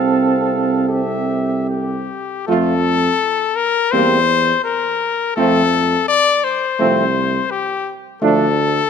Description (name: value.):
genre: classical, brass quintet.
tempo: 83 BPM.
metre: 4/4.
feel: rubato.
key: F major.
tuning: A4 = 439 Hz.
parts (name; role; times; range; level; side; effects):
clear trumpet; melody; 0.0-8.9 s; G4 to F5; -17 LUFS; left 7 dB; none.
warm flugelhorn; second line; 0.0-8.5 s; C4 to A4; -23 LUFS; right 7 dB; none.
clear French horn; accompaniment; 0.0-8.5 s; A3 to A4; -24 LUFS; left 4 dB; none.
warm euphonium; accompaniment; 0.0-8.5 s; F3 to C4; -21 LUFS; right 5 dB; none.
warm tuba; bass; 0.0-8.8 s; C2 to F2; -21 LUFS; right 3 dB; none.
room: moderate concert hall reverb, RT60 1.8 s.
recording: none.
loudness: -14 LUFS.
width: side -7 dB against mid.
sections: 0.0-2.5 A section; 2.5-8.9 B section.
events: none.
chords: 0.0 F/C; 2.5 F; 3.9 C7/E; 5.4 F; 8.2 Dm.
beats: 0.11 0.89 1.71 | 2.48 3.21 3.93 4.65 | 5.37 6.09 6.80 7.51 | 8.22.